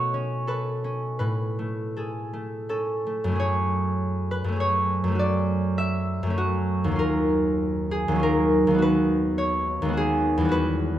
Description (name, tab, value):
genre	classical, solo harp piece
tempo	79-109 BPM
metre	3/4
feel	rubato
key	A major, F# minor from 3.4 s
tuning	A4 = 440 Hz
part	concert harp	solo	0.0-11.0 s	D#2 to E5	-22 LUFS	equal	none
room	wet recital hall reverb, RT60 1.7 s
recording	none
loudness	-22 LUFS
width	side -12 dB against mid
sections	0.0-3.4 A section; 3.4-11.0 B section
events	none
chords	0.0 B9; 1.2 Amaj7; 5.2 Dmaj9/F#; 7.0 D#m9; 8.8 G#m9/D#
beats	0.47 | 1.21 1.96 2.69 | 3.38 4.00 4.61 | 5.21 5.79 6.39 | 7.00 7.60 8.21 | 8.81 9.39 9.96 | 10.54